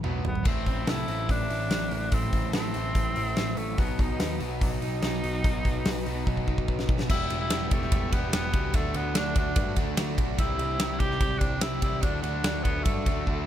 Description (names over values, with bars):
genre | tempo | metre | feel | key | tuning
classic rock | 146 BPM | 4/4 | straight | unclear | A4 = 440 Hz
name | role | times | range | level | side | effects
breathy tenor saxophone | melody | 0.0-13.5 s | A3 to G4 | -32 LUFS | equal | slapback echo
overdriven electric guitar | riff | 0.0-13.5 s | E2 to B4 | -35 LUFS | right 15 dB | none
overdriven semi-hollow guitar | riff | 0.0-13.5 s | E2 to G4 | -35 LUFS | left 12 dB | none
growling picked electric bass | bass | 0.0-13.5 s | E1 to G2 | -32 LUFS | equal | overdrive
big rock drum kit | drums | 0.0-13.4 s | crash cymbal, hi-hat, kick drum, ride cymbal, snare drum, toms | -28 LUFS | equal | none
soft string machine | sustained chords | 7.1-13.5 s | F#3 to G4 | -42 LUFS | equal | none
room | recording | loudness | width
little or no reverb | none | -24 LUFS | side -11 dB against mid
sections
0.5-7.1 A section; 7.1-13.5 B section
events
drum fill 0.0-0.5, 6.3-7.1, 13.3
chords
0.0 B5; 0.5 Am; 3.8 B; 7.1 Em; 8.7 D; 10.4 C; 12.0 D